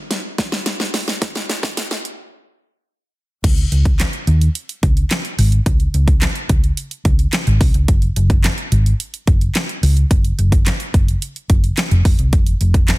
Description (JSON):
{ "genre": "dance-pop", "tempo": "108 BPM", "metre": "4/4", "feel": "straight", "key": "unclear", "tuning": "A4 = 439 Hz", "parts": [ { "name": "pop drum kit", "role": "drums", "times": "0.1-13.0 s", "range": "crash cymbal, handclaps, hi-hat, kick drum, snare drum", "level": "-16 LUFS", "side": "equal", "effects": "none" }, { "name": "hollow-body short-scale fingered electric bass", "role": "bass", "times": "3.4-12.9 s", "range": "F1 to Eb2", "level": "-15 LUFS", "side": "equal", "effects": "sidechain pumping" } ], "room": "little or no reverb", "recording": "dense, heavily limited modern master, high-pass filter", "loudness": "-14 LUFS", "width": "side -20 dB against mid", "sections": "0.0-3.4 A section; 3.4-13.0 B section", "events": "build-up 0.0-3.4; drum fill 0.0-2.3; break 2.3-3.4; drop 3.4-13.0", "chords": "none", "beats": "0.11 0.66 | 1.22 1.77 2.33 2.88 | 3.44 4.00 4.55 5.11 | 5.66 6.22 6.77 7.33 | 7.88 8.44 9.00 9.55 | 10.11 10.66 11.22 11.77 | 12.33 12.88" }